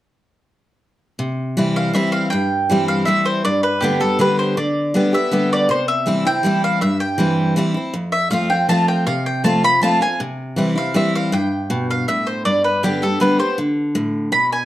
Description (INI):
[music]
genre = bluegrass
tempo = 160 BPM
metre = 3/4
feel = straight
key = C major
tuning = A4 = 440 Hz
[part]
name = picked steel-string acoustic guitar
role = accompaniment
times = 1.2-14.7 s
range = F2 to G4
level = -18 LUFS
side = equal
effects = none
[part]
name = mandolin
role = melody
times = 1.8-14.7 s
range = G4 to B5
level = -19 LUFS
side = equal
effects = none
[sound]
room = moderate studio reverb, RT60 0.7 s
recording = dark, warm production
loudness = -16 LUFS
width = side -14 dB against mid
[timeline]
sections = 1.2-14.7 A section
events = none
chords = 1.2 C; 3.4 G; 5.7 C; 7.9 F; 10.2 C; 12.5 G